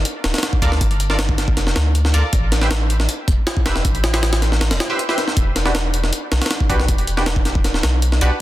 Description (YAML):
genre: drum and bass, jungle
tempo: 158 BPM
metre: 4/4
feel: straight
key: E minor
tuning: A4 = 440 Hz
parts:
  - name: soft dub sub bass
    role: bass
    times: 0.0-8.3 s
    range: D1 to D2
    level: -19 LUFS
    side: equal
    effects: none
  - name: jungle sampler-style drum kit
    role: drums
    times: 0.1-8.3 s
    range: hi-hat, kick drum, snare drum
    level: -18 LUFS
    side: equal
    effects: none
  - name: band-passed chord stab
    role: stabs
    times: 0.6-8.3 s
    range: D4 to E5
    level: -25 LUFS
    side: right 1 dB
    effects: chorus, dub echo
room: light reverb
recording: dense, heavily limited modern master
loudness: -16 LUFS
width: side -15 dB against mid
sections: 0.0-8.4 A section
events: none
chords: 0.0 Gm9; 2.3 Am9; 5.4 Em9